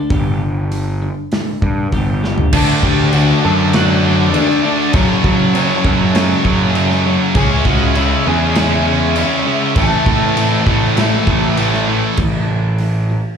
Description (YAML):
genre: quiet-loud alternative rock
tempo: 99 BPM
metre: 4/4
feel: straight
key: unclear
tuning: A4 = 440 Hz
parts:
  - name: twelve-string electric guitar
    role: arpeggios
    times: 0.0-2.5, 12.2-13.4 s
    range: G2 to A3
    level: -24 LUFS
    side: left 1 dB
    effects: slapback echo
  - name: fuzz picked electric bass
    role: bass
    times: 0.1-13.2 s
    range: G1 to F#3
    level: -17 LUFS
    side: right 1 dB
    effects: overdrive
  - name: big rock drum kit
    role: drums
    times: 0.1-12.9 s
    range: crash cymbal, hi-hat, kick drum, snare drum, toms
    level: -19 LUFS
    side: equal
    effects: none
  - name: electric guitar through a small old amp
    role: melody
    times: 2.5-11.6 s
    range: C#4 to A5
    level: -22 LUFS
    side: left 1 dB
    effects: vibrato effect, slapback echo, plate reverb
  - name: muted chamber string section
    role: sustained chords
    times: 2.5-12.2 s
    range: C4 to A5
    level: -28 LUFS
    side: left 2 dB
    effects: none
  - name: crunchy overdriven guitar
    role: riff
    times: 2.5-12.2 s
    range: F#2 to D4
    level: -20 LUFS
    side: left 10 dB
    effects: none
  - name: high-gain distorted guitar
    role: riff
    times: 2.5-12.2 s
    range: F#2 to D4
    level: -19 LUFS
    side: right 12 dB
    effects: distortion
  - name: high-gain distorted guitar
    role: riff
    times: 2.5-12.2 s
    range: F#2 to D4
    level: -20 LUFS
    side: left 1 dB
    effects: distortion
room: light reverb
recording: live gig heard through the venue's PA, club reverb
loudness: -12 LUFS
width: side -7 dB against mid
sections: 0.0-2.5 A section; 2.5-12.2 B section; 12.2-13.4 A section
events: drum fill 2.2-2.5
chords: 0.1 G5; 2.5 D; 4.9 F#m; 7.4 C#m; 9.8 Am; 12.2 A5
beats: | 0.11 0.72 1.32 1.93 | 2.53 3.14 3.74 4.34 | 4.95 5.55 6.15 6.75 | 7.36 7.96 8.56 9.16 | 9.77 10.37 10.98 11.58 | 12.19 12.80